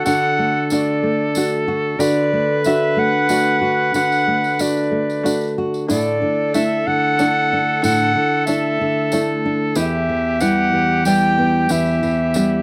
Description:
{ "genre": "acoustic folk duo or small band", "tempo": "93 BPM", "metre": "3/4", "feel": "straight", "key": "unclear", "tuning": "A4 = 440 Hz", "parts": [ { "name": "warm clarinet", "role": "melody", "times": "0.0-12.6 s", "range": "D5 to G5", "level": "-22 LUFS", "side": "equal", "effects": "none" }, { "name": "clear oboe", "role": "second line", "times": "0.0-12.6 s", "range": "G4 to B4", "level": "-27 LUFS", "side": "equal", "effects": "none" }, { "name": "nylon-string guitar", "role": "accompaniment", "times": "0.0-12.6 s", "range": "E2 to F#4", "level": "-23 LUFS", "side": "equal", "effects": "none" }, { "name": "open-back banjo", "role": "arpeggios", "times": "0.0-12.6 s", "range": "D3 to F#4", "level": "-26 LUFS", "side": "equal", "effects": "none" }, { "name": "tambourine", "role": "percussion", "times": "0.1-12.5 s", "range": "none", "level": "-33 LUFS", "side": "equal", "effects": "none" } ], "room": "light reverb", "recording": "dry, close 1970s-style studio recording", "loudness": "-18 LUFS", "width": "mono", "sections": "0.0-12.6 A section", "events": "none", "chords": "0.0 D; 5.9 Asus4; 9.8 Em" }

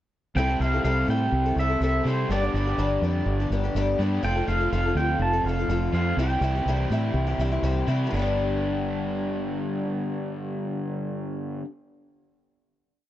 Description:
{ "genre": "rock", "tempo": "124 BPM", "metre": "4/4", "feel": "straight", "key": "G mixolydian", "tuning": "A4 = 438 Hz", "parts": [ { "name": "pedal steel guitar", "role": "melody", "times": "0.4-7.6 s", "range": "C5 to A5", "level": "-28 LUFS", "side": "right 1 dB", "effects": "none" }, { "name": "picked twelve-string acoustic guitar", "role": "accompaniment", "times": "0.4-11.7 s", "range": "G2 to A4", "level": "-30 LUFS", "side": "left 4 dB", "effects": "none" }, { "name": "raw garage guitar", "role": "riff", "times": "0.4-11.6 s", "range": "F2 to G4", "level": "-29 LUFS", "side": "right 1 dB", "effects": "overdrive" }, { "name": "fingered electric bass", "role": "bass", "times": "0.4-11.1 s", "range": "F1 to C3", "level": "-26 LUFS", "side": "equal", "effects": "none" } ], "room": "little or no reverb", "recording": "dark, warm production, nothing above 7.9 kHz", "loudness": "-23 LUFS", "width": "side -13 dB against mid", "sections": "0.4-8.1 pre-chorus; 8.1-12.0 final chord", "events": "none", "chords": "0.4 C6; 2.3 G; 4.2 F; 6.2 C; 8.1 G" }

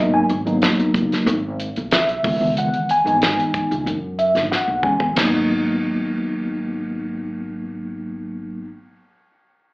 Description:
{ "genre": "electric jazz fusion", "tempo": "92 BPM", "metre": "4/4", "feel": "straight", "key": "G# minor", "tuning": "A4 = 439 Hz", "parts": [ { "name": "mellow tine electric piano", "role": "accompaniment", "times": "0.0-8.7 s", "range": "D#3 to G#5", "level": "-19 LUFS", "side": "equal", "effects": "medium stereo tremolo, lush chorus, slapback echo" }, { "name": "upright bass", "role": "bass", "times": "0.0-8.6 s", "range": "G#1 to F#2", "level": "-27 LUFS", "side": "equal", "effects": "none" }, { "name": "damped 70s drum kit", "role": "drums", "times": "0.3-5.3 s", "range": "hi-hat, kick drum, ride cymbal, snare drum, toms", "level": "-23 LUFS", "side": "equal", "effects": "none" } ], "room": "wet club ambience, RT60 0.5 s", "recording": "live gig heard through the venue's PA, club reverb, AM radio sound", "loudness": "-18 LUFS", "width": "side -24 dB against mid", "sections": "0.0-5.2 A section; 5.2-7.8 B section", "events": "tine electric piano fill 3.9-5.2; drum fill 4.5-5.2", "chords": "0.0 G#m9; 2.2 C#m9; 5.2 G#m9" }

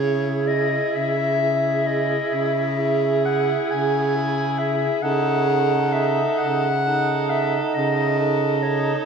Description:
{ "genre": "classical, lyrical piece for single-reed quartet", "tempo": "44 BPM (dotted quarters)", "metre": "12/8", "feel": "rubato", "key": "C# minor", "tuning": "A4 = 440 Hz", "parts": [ { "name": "mellow clarinet", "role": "melody", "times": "0.0-9.1 s", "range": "C#5 to G#5", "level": "-23 LUFS", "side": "left 4 dB", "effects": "none" }, { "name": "bright alto saxophone", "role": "second line", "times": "0.0-9.1 s", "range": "G#4 to A4", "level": "-26 LUFS", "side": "right 6 dB", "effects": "none" }, { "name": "warm tenor saxophone", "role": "accompaniment", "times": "0.0-9.1 s", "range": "D#4 to E4", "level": "-28 LUFS", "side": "left 1 dB", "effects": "none" }, { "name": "warm baritone saxophone", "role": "bass", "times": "0.0-8.9 s", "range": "C#3", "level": "-24 LUFS", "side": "right 3 dB", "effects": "none" } ], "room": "wet cathedral reverb, RT60 5.0 s", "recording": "in a vast, echoing space, small room ambience", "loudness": "-19 LUFS", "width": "side -6 dB against mid", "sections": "0.0-9.1 A section", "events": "none", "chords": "0.0 C#m; 5.0 D#m7b5/C#" }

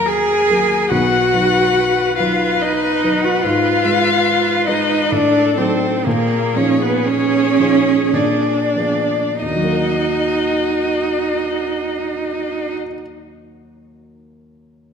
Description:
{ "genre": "classical, slow romantic movement for piano quartet", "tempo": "45-74 BPM", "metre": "3/4", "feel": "rubato", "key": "Eb minor", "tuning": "A4 = 438 Hz", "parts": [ { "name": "dark violin", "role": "melody", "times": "0.0-12.8 s", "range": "Bb4 to Ab5", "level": "-20 LUFS", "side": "left 8 dB", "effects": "none" }, { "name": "rich cello", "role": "second line", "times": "0.0-12.7 s", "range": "Bb3 to Ab4", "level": "-17 LUFS", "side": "right 4 dB", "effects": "none" }, { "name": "dark baby grand piano", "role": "accompaniment", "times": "0.0-14.9 s", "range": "B1 to B4", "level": "-22 LUFS", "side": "left 1 dB", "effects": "none" }, { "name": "rich viola", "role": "accompaniment", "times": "0.0-12.7 s", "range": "Gb4 to B4", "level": "-24 LUFS", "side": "right 1 dB", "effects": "none" } ], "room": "wet concert hall reverb, RT60 2.1 s", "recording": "none", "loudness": "-14 LUFS", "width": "side -6 dB against mid", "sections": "0.0-9.4 A section; 9.4-13.2 B section", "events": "slowing down 2.2-9.4", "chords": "0.0 Ebm; 0.9 B; 3.4 Fdim/Ab; 5.1 Adim7; 6.1 Bb7sus4; 8.1 Bb7b9; 9.4 Ebm" }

